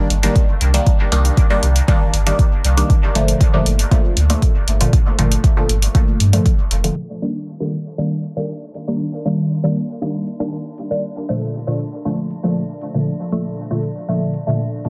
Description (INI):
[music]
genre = dub techno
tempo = 118 BPM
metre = 4/4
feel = straight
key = unclear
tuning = A4 = 441 Hz
[part]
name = filtered dub chord stab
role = stabs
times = 0.0-14.9 s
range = Bb2 to D4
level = -22 LUFS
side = equal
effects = phaser, sidechain pumping, dub echo
[part]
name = warm sub bass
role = bass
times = 0.1-6.9 s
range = F1 to G2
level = -18 LUFS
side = equal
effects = sidechain pumping
[part]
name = electronic hi-hat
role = drums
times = 0.1-14.9 s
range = none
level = -26 LUFS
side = equal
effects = overdrive
[part]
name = electronic kick drum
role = drums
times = 0.4-6.6 s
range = none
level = -17 LUFS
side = equal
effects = overdrive
[part]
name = metallic inharmonic drone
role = texture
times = 8.3-14.9 s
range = D4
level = -38 LUFS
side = equal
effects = chorus, built-in reverb, sidechain pumping
[sound]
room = light reverb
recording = dense, heavily limited modern master, low-pass filter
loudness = -18 LUFS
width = mono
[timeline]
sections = 0.0-7.0 A section; 7.0-14.9 B section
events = none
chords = 0.0 Cm7; 2.9 Gm7; 7.0 Ebmaj7; 11.0 Gm7 (rootless)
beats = 0.36 | 0.86 1.37 1.88 2.39 | 2.90 3.41 3.92 4.42 | 4.93 5.44 5.95 6.46 | 6.97 7.47 7.98 8.49 | 9.00 9.51 10.02 10.53 | 11.03 11.54 12.05 12.56 | 13.07 13.58 14.09 14.59